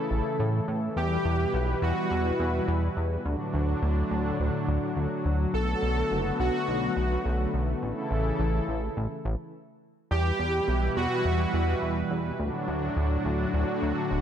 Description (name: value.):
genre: synthwave.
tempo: 105 BPM.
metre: 4/4.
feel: straight.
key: E dorian.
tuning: A4 = 440 Hz.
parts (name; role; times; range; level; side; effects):
warm analog pad; sustained chords; 0.0-14.2 s; A2 to B4; -29 LUFS; equal; chorus, tremolo.
chorused synth bass; bass; 0.1-14.2 s; D1 to A2; -27 LUFS; equal; none.
soft supersaw; melody; 1.0-11.7 s; F#4 to A4; -30 LUFS; right 1 dB; tape echo.
room: light reverb.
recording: none.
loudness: -25 LUFS.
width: side -9 dB against mid.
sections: 0.0-10.1 A section; 10.1-14.2 B section.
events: stop 9.5-10.1.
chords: 0.0 A; 1.0 Em; 3.3 D; 5.5 Bm7; 7.8 A; 10.1 Em; 12.4 D.